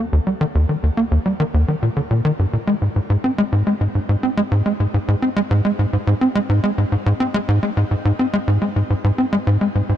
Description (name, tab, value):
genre	ambient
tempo	106 BPM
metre	4/4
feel	straight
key	unclear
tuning	A4 = 440 Hz
part	tight sequencer bass	solo	0.0-9.9 s	Eb2 to C4	-16 LUFS	equal	lush chorus, ping-pong delay
room	light reverb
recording	none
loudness	-16 LUFS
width	side -11 dB against mid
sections	0.0-10.0 A section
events	none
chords	none